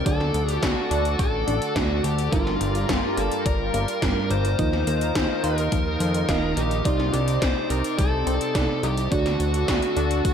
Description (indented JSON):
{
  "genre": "synthwave",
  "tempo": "106 BPM",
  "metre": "4/4",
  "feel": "straight",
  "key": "G minor",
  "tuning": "A4 = 438 Hz",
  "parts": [
    { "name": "dark smooth lead guitar", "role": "melody", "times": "0.0-10.3 s", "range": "F4 to C5", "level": "-27 LUFS", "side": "left 1 dB", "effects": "overdrive, ping-pong delay" },
    { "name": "lush unison pad", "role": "sustained chords", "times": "0.0-10.3 s", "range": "C3 to D5", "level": "-30 LUFS", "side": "left 1 dB", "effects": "chorus, sidechain pumping" },
    { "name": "mellow FM electric piano", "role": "stabs", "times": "0.0-10.3 s", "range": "G2 to Eb5", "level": "-29 LUFS", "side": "right 3 dB", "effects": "chorus, cassette tape, ping-pong delay" },
    { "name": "fat analog bass", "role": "bass", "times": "0.0-10.3 s", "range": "Eb1 to F2", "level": "-26 LUFS", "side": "equal", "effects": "sidechain pumping" },
    { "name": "analog pluck", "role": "arpeggios", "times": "0.1-10.3 s", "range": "F3 to F#4", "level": "-34 LUFS", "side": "left 1 dB", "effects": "chorus, phaser, ping-pong delay" },
    { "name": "80s electronic pad drums", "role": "drums", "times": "0.1-10.3 s", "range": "hi-hat, snare drum", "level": "-29 LUFS", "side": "equal", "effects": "gated reverb" },
    { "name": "electronic kick drum", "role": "drums", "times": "0.1-10.3 s", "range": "none", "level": "-25 LUFS", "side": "equal", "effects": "overdrive" }
  ],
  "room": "light reverb, digital ambience",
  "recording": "none",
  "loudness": "-20 LUFS",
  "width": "side -8 dB against mid",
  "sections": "0.0-10.3 A section",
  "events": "none",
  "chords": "0.1 D; 2.3 Gm7; 4.6 Ebsus2; 6.9 Cmadd9; 9.1 D",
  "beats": "| 0.06 0.63 1.19 1.76 | 2.33 2.89 3.46 4.02 | 4.59 5.16 5.72 6.29 | 6.85 7.42 7.99 8.55 | 9.12 9.68 10.25"
}